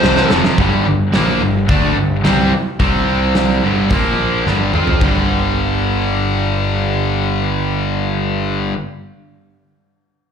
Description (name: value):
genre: hard rock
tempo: 108 BPM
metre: 4/4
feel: straight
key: G minor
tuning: A4 = 440 Hz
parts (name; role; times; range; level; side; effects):
- overdriven semi-hollow guitar; riff; 0.0-8.8 s; F2 to F4; -20 LUFS; right 11 dB; slapback echo
- tight distorted guitar; riff; 0.0-8.8 s; F2 to F4; -19 LUFS; left 10 dB; distortion, slapback echo
- fuzz picked electric bass; bass; 0.0-8.7 s; F1 to F2; -18 LUFS; equal; overdrive
- huge arena drum kit; drums; 0.0-5.1 s; crash cymbal, hi-hat, kick drum, snare drum, toms; -18 LUFS; equal; none
room: light reverb, small room ambience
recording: live gig heard through the venue's PA, club reverb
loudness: -13 LUFS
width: side -7 dB against mid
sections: 0.6-5.0 A section; 5.0-7.2 B section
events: drum fill 0.0-0.6, 4.5-5.0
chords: 0.0 F5; 0.6 Gm; 2.8 C5; 3.6 G5; 3.9 Bb5; 4.5 G5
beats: 0.03 | 0.58 1.14 1.69 2.24 | 2.80 3.35 3.91 4.46 | 5.02 5.58 6.13 6.69